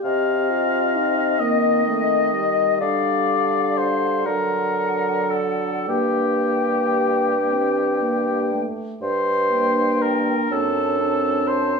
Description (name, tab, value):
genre	classical, slow romantic movement for wind quintet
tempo	35-45 BPM (dotted quarters)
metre	6/8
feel	rubato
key	G minor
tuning	A4 = 441 Hz
part	bright silver concert flute	melody	0.0-11.8 s	Eb5 to A5	-26 LUFS	left 10 dB	none
part	warm oboe	second line	0.0-11.8 s	G4 to F5	-23 LUFS	left 4 dB	none
part	dark clarinet	accompaniment	0.0-11.8 s	C4 to G4	-28 LUFS	right 3 dB	none
part	warm French horn	accompaniment	0.0-11.8 s	F#3 to C4	-27 LUFS	equal	none
part	clear bassoon	bass	0.0-11.8 s	F#2 to Eb3	-23 LUFS	right 4 dB	none
room	wet recital hall reverb, RT60 1.5 s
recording	small room ambience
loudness	-18 LUFS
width	side -4 dB against mid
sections	0.0-9.0 A section; 9.0-11.8 B section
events	none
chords	0.0 Cm7; 2.8 G5/D; 4.3 D; 5.9 Gm; 10.5 D7/F#